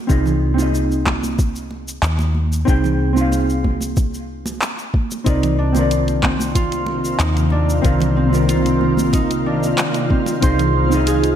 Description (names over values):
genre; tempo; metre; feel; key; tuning
sunset chillout; 93 BPM; 4/4; straight; unclear; A4 = 441 Hz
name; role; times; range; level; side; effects
hollow-body jazz guitar; accompaniment; 0.1-11.4 s; Eb3 to G5; -21 LUFS; equal; auto-pan, digital delay
woody fretless electric bass; bass; 0.1-11.4 s; C2 to Eb2; -20 LUFS; equal; none
electronic kick drum; drums; 0.1-10.6 s; none; -18 LUFS; equal; none
smooth R&B drum kit; drums; 0.1-11.4 s; handclaps, hi-hat, shaker; -25 LUFS; equal; none
congas; percussion; 0.3-11.0 s; none; -27 LUFS; right 4 dB; none
shimmering ambient pad; sustained chords; 6.1-11.4 s; C3 to F4; -22 LUFS; equal; chorus, built-in reverb
Celtic harp; arpeggios; 5.3-11.4 s; C4 to C5; -23 LUFS; right 1 dB; digital delay
room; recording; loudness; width
moderate lush hall reverb, RT60 1.7 s; dark, warm production; -15 LUFS; side -9 dB against mid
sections
0.0-11.4 A section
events
none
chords
0.1 Fm7/C; 5.3 Cm11; 10.4 Fm7/C